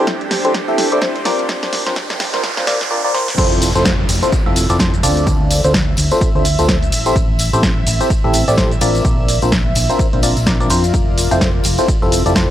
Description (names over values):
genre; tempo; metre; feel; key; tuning
piano house; 127 BPM; 4/4; swing 58% on 16ths; F major; A4 = 440 Hz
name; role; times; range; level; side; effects
barking FM electric piano; riff; 0.0-12.5 s; C4 to E5; -18 LUFS; equal; phaser, cassette tape, sidechain pumping
hollow-body short-scale fingered electric bass; bass; 0.0-12.5 s; F1 to F2; -19 LUFS; equal; sidechain pumping, high-pass filter
riser, noise sweep and downlifter; sound effects; 0.0-7.2 s; none; -26 LUFS; right 2 dB; none
granular cloud pad; texture; 0.0-12.5 s; D4 to E5; -25 LUFS; equal; built-in reverb, sidechain pumping
electronic kick drum; drums; 0.1-12.5 s; none; -18 LUFS; equal; high-pass filter on kick
punchy analog drum machine; drums; 0.1-12.5 s; crash cymbal, hi-hat, ride cymbal, shaker, snare drum; -20 LUFS; equal; none
tambourine; percussion; 3.4-12.5 s; none; -28 LUFS; left 4 dB; none
room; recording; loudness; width
light reverb, digital ambience; dry, gritty hardware recording, transformer saturation, high-pass filter; -13 LUFS; side -12 dB against mid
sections
0.0-3.4 A section; 3.4-12.5 B section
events
build-up 0.0-3.4; drum fill 0.0-2.9, 3.1; riser 0.0-3.4; filter sweep 0.0-3.4; noise sweep 1.5-3.4; drop 3.4-12.5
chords
0.0 Am7; 1.5 Bbadd9; 3.4 Fmaj7; 5.0 Dm7; 6.9 Am7; 9.0 Bbadd9; 10.9 Fmaj7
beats
0.07 0.55 1.02 | 1.49 1.96 2.44 2.91 | 3.38 3.85 4.33 4.80 | 5.27 5.74 6.21 6.69 | 7.16 7.63 8.10 8.58 | 9.05 9.52 9.99 10.47 | 10.94 11.41 11.88 12.36